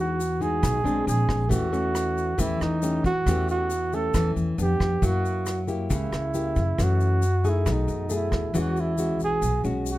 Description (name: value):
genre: bossa nova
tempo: 136 BPM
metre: 4/4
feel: straight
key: E major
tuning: A4 = 440 Hz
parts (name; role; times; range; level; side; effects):
- breathy flugelhorn; melody; 0.0-10.0 s; D#4 to A4; -27 LUFS; right 3 dB; none
- nylon-string guitar; accompaniment; 0.0-10.0 s; F#2 to G#4; -28 LUFS; left 2 dB; none
- upright bass; bass; 0.0-10.0 s; A#1 to F#2; -26 LUFS; equal; none
- vintage brush drum kit; drums; 0.2-8.4 s; hi-hat, kick drum, rim click; -29 LUFS; equal; none
- egg shaker; percussion; 0.2-10.0 s; none; -40 LUFS; left 7 dB; none
room: little or no reverb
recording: dark, warm production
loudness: -22 LUFS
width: side -16 dB against mid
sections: 0.0-8.5 A section; 8.5-10.0 B section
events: none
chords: 0.0 Emaj9; 1.1 A#9; 1.5 A7/E; 4.6 G7/F; 5.0 F#7b9; 6.8 F#m7; 7.7 B6; 8.5 E69